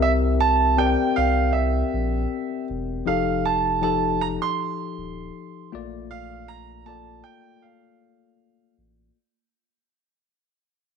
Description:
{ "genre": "lush 1970s-style soul", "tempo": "79 BPM", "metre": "4/4", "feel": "swing 54% on 16ths", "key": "Bb major", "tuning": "A4 = 439 Hz", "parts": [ { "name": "clear baby grand piano", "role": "melody", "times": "0.0-8.7 s", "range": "E5 to C6", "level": "-24 LUFS", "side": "right 10 dB", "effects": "none" }, { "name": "tine electric piano", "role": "accompaniment", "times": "0.0-9.2 s", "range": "F3 to G5", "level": "-26 LUFS", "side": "left 10 dB", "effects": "none" }, { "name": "saturated sub bass", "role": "bass", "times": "0.0-9.1 s", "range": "Eb1 to C2", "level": "-26 LUFS", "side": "right 1 dB", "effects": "none" } ], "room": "moderate echo chamber reverb, RT60 1.8 s, small room ambience", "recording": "1960s-style stereo with parts hard left and right", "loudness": "-20 LUFS", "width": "side -6 dB against mid", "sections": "0.0-9.2 A section", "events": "fade-out 0.0-9.2", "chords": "0.0 C7; 3.1 F9; 5.7 Bbmaj7" }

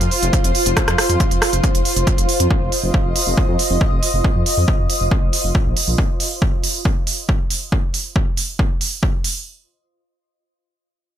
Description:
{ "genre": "driving peak-time techno", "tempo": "138 BPM", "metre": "4/4", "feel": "straight", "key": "unclear", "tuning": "A4 = 440 Hz", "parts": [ { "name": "detuned saw bass", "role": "bass", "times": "0.0-6.0 s", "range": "F1 to F2", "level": "-20 LUFS", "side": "equal", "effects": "sidechain pumping" }, { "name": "techno drum kit", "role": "drums", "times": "0.0-9.3 s", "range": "hi-hat, rim click", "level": "-21 LUFS", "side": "right 2 dB", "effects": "none" }, { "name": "granular cloud pad", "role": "texture", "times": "0.0-6.0 s", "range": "F4 to F5", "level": "-22 LUFS", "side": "equal", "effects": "built-in reverb, sidechain pumping" }, { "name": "electronic kick drum", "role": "drums", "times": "0.3-9.1 s", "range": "none", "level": "-18 LUFS", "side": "equal", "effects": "none" } ], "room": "little or no reverb", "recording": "none", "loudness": "-15 LUFS", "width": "side -10 dB against mid", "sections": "0.0-9.5 A section", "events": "filter sweep on detuned saw bass 0.0-6.0", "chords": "0.0 F5" }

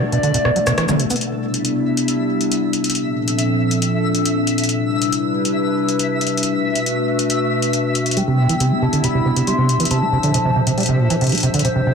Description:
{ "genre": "IDM", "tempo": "138 BPM", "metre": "4/4", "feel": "straight", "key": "C major", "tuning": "A4 = 440 Hz", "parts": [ { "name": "warbly nostalgic lead", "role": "melody", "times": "0.0-1.0, 8.2-11.9 s", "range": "C5 to C6", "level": "-24 LUFS", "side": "left 1 dB", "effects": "chorus, cassette tape, tape echo" }, { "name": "warbly tape-like pad", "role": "sustained chords", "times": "0.0-11.9 s", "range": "Bb2 to C5", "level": "-19 LUFS", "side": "left 1 dB", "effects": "chorus, built-in reverb" }, { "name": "deep acid bass", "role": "arpeggios", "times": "0.0-1.2, 8.2-11.9 s", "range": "Bb2 to C4", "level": "-18 LUFS", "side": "right 2 dB", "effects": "none" }, { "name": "twinkling granular texture", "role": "texture", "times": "0.1-11.9 s", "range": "A3 to E5", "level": "-27 LUFS", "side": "left 2 dB", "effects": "built-in reverb" }, { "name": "electro analog drum machine", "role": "drums", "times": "0.1-11.7 s", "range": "cabasa, hi-hat, rim click, toms", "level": "-22 LUFS", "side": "left 2 dB", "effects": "soft clipping on snare" } ], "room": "wet echo chamber reverb, RT60 1.4 s", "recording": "dense, heavily limited modern master", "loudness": "-16 LUFS", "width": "side -6 dB against mid", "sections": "0.0-1.2 A section; 1.2-11.9 B section", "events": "none", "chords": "0.0 Bm7; 1.2 Cmaj7; 3.0 Bbmaj7; 4.7 Cmaj7; 6.4 Bm7; 8.2 Cmaj7; 9.9 Bbmaj7" }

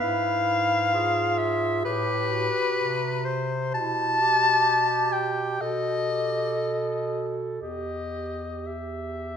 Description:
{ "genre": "classical, lyrical piece for single-reed quartet", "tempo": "56-66 BPM", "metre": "4/4", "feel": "rubato", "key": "E minor", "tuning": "A4 = 440 Hz", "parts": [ { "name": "clear soprano saxophone", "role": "melody", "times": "0.0-9.4 s", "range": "B4 to A5", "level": "-24 LUFS", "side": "left 2 dB", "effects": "none" }, { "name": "warm clarinet", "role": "second line", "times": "0.0-9.4 s", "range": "E4 to B4", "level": "-33 LUFS", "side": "right 6 dB", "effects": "none" }, { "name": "clear clarinet", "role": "accompaniment", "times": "0.0-9.4 s", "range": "E4 to A4", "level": "-32 LUFS", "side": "right 1 dB", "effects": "none" }, { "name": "warm bass clarinet", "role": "bass", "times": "0.0-9.4 s", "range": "E2 to C3", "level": "-33 LUFS", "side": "right 2 dB", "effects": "none" } ], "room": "moderate scoring stage reverb, RT60 1.6 s", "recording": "minimal, uncompressed stereo recording", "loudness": "-23 LUFS", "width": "side -8 dB against mid", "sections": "0.0-9.4 A section", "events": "none", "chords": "0.0 E/G#; 1.8 Am7; 3.7 Emadd11/B; 5.6 B7; 7.6 Em" }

